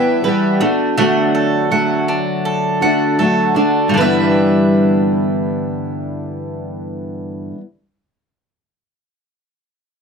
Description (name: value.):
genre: acoustic pop.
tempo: 81 BPM.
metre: 4/4.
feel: swing 55% on 16ths.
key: G major.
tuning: A4 = 440 Hz.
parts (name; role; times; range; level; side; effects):
fingerpicked steel-string acoustic guitar; accompaniment; 0.0-7.7 s; G2 to G4; -15 LUFS; equal; double-tracked left and right.
mandolin; arpeggios; 0.0-7.6 s; G3 to F#5; -20 LUFS; right 3 dB; none.
room: moderate small room reverb, RT60 0.5 s.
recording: none.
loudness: -13 LUFS.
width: side -6 dB against mid.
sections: 0.0-3.9 A section; 3.9-6.9 B section.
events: none.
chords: 0.0 G6; 0.6 D; 3.9 G6.